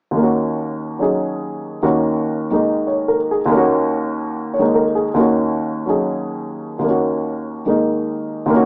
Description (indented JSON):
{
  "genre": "jazz",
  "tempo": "144 BPM",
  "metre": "4/4",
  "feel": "swing 65% on 8ths",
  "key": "Eb minor",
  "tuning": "A4 = 441 Hz",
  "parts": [
    { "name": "warm upright piano", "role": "accompaniment", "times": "0.1-8.7 s", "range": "Eb2 to Db5", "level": "-19 LUFS", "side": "equal", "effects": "none" }
  ],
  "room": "moderate studio reverb, RT60 0.7 s",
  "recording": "small speaker sound",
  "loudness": "-19 LUFS",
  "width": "mono",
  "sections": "0.2-8.7 A section",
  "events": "none",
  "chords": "0.2 Ebm7",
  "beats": "| 0.16 0.58 0.99 1.41 | 1.83 2.25 2.66 3.08 | 3.50 3.92 4.33 4.75 | 5.17 5.58 6.00 6.42 | 6.84 7.25 7.67 8.09 | 8.51"
}